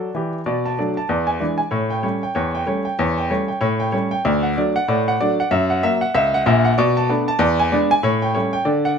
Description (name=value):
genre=jazz, stride piano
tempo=190 BPM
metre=4/4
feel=swing 60% on 8ths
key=unclear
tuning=A4 = 440 Hz
part: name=clear baby grand piano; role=solo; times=0.0-9.0 s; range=A#1 to A5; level=-17 LUFS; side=equal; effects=none
room=light reverb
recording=none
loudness=-17 LUFS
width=side -6 dB against mid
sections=0.5-9.0 A section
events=none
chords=0.5 Bm7; 1.1 E7; 1.7 A7; 4.2 D; 5.5 F#7; 6.8 Bm7; 7.4 E7; 8.0 A7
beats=0.14 | 0.45 0.77 1.09 1.40 | 1.72 2.03 2.35 2.67 | 2.98 3.30 3.61 3.93 | 4.24 4.56 4.88 5.19 | 5.51 5.82 6.14 6.46 | 6.77 7.09 7.40 7.72 | 8.04 8.35 8.67 8.98